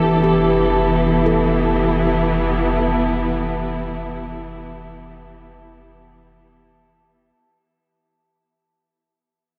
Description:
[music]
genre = ambient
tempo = free time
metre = none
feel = none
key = unclear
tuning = A4 = 439 Hz
[part]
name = muted studio string section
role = sustained chords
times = 0.0-7.4 s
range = E3 to A4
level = -21 LUFS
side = equal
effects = none
[part]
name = handpan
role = arpeggios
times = 0.0-3.5 s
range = E3 to A4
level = -25 LUFS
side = equal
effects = diffuse ambient delay
[part]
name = warm sub bass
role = bass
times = 0.0-7.3 s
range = F1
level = -28 LUFS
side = equal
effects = none
[part]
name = glass harmonica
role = texture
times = 0.0-7.4 s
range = A5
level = -32 LUFS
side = equal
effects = none
[sound]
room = wet huge ambient reverb, RT60 8.0 s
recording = none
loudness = -18 LUFS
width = mono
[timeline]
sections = 0.0-7.4 A section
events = fade-out 0.0-7.4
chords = 0.0 Em7/F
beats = free time

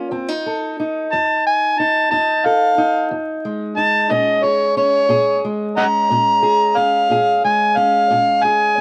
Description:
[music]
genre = acoustic country blues, solo or duo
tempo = 60 BPM (dotted quarters)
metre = 12/8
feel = straight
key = Bb minor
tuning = A4 = 444 Hz
[part]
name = fingerpicked steel-string acoustic guitar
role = accompaniment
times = 0.0-8.8 s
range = F2 to A4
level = -24 LUFS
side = equal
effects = slapback echo
[part]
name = overdriven harmonica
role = melody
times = 1.1-8.8 s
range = Db5 to Bb5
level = -17 LUFS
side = equal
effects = none
[sound]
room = little or no reverb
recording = recorded outdoors, with no room sound, vinyl crackle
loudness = -17 LUFS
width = mono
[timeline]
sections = 0.0-8.8 A section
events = harmonica solo 0.0-8.8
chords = 0.1 F7#9; 4.1 Bbm7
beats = | 0.12 1.11 2.11 3.10 | 4.10 5.10 6.10 7.09 | 8.09

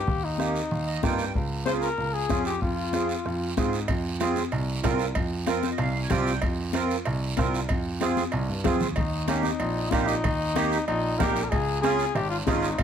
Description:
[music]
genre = latin, cumbia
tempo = 189 BPM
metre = 4/4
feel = straight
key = F minor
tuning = A4 = 438 Hz
[part]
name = mellow trumpet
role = second line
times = 0.0-3.5, 9.0-12.8 s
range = Db4 to C5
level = -29 LUFS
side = left 6 dB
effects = none
[part]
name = dark grand piano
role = bass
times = 0.1-12.8 s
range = Ab1 to Ab2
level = -29 LUFS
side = right 2 dB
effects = none
[part]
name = bombo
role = percussion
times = 0.1-12.8 s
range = none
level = -30 LUFS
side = left 1 dB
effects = none
[part]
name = guiro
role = percussion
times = 0.1-12.8 s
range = none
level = -39 LUFS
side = right 6 dB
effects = none
[part]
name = accordion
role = accompaniment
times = 0.4-12.7 s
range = Bb3 to Ab5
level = -28 LUFS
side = right 6 dB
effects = light tremolo tuning
[part]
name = congas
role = percussion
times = 0.4-12.6 s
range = none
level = -33 LUFS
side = left 7 dB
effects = none
[part]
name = cowbell and timbales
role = percussion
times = 3.9-12.8 s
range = none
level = -35 LUFS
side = right 4 dB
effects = none
[sound]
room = light reverb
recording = none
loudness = -24 LUFS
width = side -8 dB against mid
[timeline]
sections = 0.0-3.9 A section; 3.9-12.8 A section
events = trumpet solo 0.0-3.9; accordion fill 0.7-1.3, 5.5-6.4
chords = 0.0 Eb; 1.3 Db; 2.6 Fm; 9.0 Eb; 11.5 Db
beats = | 0.07 0.39 0.71 1.03 | 1.35 1.67 1.98 2.30 | 2.62 2.94 3.25 3.57 | 3.89 4.21 4.53 4.84 | 5.16 5.48 5.80 6.11 | 6.43 6.75 7.07 7.38 | 7.70 8.02 8.34 8.65 | 8.97 9.29 9.61 9.93 | 10.24 10.56 10.88 11.20 | 11.51 11.83 12.15 12.47 | 12.78

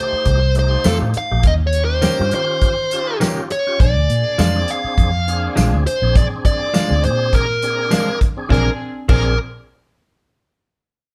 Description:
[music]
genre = straight-eighth soul blues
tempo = 102 BPM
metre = 4/4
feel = swing 54% on 16ths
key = Bb mixolydian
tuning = A4 = 441 Hz
[part]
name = dark smooth lead guitar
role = melody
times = 0.0-9.4 s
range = A4 to F5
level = -22 LUFS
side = equal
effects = overdrive
[part]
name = tonewheel organ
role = accompaniment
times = 0.0-9.4 s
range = A3 to Ab4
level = -30 LUFS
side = equal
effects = slow rotary speaker, overdrive, chorus vibrato
[part]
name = vintage muted fingered electric bass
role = bass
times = 0.1-9.4 s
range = Bb1 to Eb3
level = -21 LUFS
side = equal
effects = none
[part]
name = warm soul drum kit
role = drums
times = 0.3-9.2 s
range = crash cymbal, hi-hat, kick drum, snare drum, tambourine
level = -20 LUFS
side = equal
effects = none
[part]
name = warm chamber string section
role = sustained chords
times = 0.6-8.8 s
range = Bb3 to C5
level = -35 LUFS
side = equal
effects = none
[part]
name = direct-recorded clean electric guitar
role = stabs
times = 0.8-9.3 s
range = Eb3 to Ab4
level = -25 LUFS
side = equal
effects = none
[sound]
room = light reverb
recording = band playing live in one room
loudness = -17 LUFS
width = mono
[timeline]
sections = 0.0-8.5 A section; 8.5-10.9 B section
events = none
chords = 0.0 F7; 1.4 Eb7; 3.8 Bb9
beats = 0.27 0.85 | 1.44 2.03 2.62 3.21 | 3.80 4.39 4.98 5.57 | 6.15 6.74 7.33 7.92 | 8.51 9.10

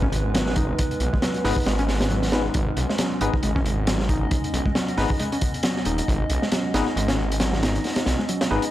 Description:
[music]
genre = breakbeat, breaks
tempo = 136 BPM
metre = 4/4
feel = swing 56% on 16ths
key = G# minor pentatonic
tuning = A4 = 440 Hz
[part]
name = warbly tape-like pad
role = sustained chords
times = 0.0-8.7 s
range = G#3 to D#5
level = -30 LUFS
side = right 1 dB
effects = chorus, built-in reverb, sidechain pumping
[part]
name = picked electric bass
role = riff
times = 0.0-8.7 s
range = F#3 to D#4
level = -29 LUFS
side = equal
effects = tube saturation, vintage 12-bit sampler grit, tape echo
[part]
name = detuned saw bass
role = bass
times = 0.0-8.6 s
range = D#1 to B1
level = -25 LUFS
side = equal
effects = none
[part]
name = crunchy breakbeat drum kit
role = drums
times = 0.0-8.7 s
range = hi-hat, kick drum, snare drum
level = -24 LUFS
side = equal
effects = none
[part]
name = barky tine electric piano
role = stabs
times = 1.4-8.6 s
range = B3 to B4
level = -29 LUFS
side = left 4 dB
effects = medium stereo tremolo, vintage 12-bit sampler grit, tape echo
[sound]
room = little or no reverb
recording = dry, gritty hardware recording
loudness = -20 LUFS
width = side -14 dB against mid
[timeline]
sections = 0.0-8.7 A section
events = none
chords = 0.0 G#m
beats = 0.34 | 0.79 1.23 1.67 2.11 | 2.55 2.99 3.43 3.88 | 4.32 4.76 5.20 5.64 | 6.08 6.52 6.96 7.40 | 7.84 8.29

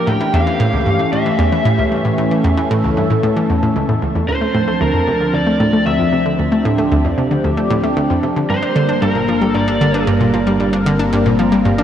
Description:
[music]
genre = ambient, sequencer-driven space music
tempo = 114 BPM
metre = 4/4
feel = straight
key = D minor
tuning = A4 = 438 Hz
[part]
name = lead guitar through a small cranked amp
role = melody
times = 0.0-10.0 s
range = Bb4 to G5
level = -22 LUFS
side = equal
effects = overdrive, shimmer reverb, tape echo
[part]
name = phased analog pad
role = sustained chords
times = 0.0-11.8 s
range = E3 to A5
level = -17 LUFS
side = equal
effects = phaser, chorus, shimmer reverb
[part]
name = analog pluck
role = riff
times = 0.1-11.8 s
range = C#2 to D4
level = -16 LUFS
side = equal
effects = chorus, tape echo
[part]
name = fat analog bass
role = bass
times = 4.3-11.8 s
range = G1 to D2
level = -28 LUFS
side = equal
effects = none
[sound]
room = wet lush hall reverb, RT60 2.5 s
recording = dark, warm production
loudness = -13 LUFS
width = side -10 dB against mid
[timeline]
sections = 0.0-4.3 A section; 4.3-11.8 B section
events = fade-in on analog synth bass 4.3-11.8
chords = 0.1 A7; 4.3 Dm7; 8.5 Gm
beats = | 0.07 0.60 1.13 1.65 | 2.18 2.71 3.23 3.76 | 4.28 4.81 5.34 5.86 | 6.39 6.92 7.44 7.97 | 8.49 9.02 9.55 10.07 | 10.60 11.13 11.65

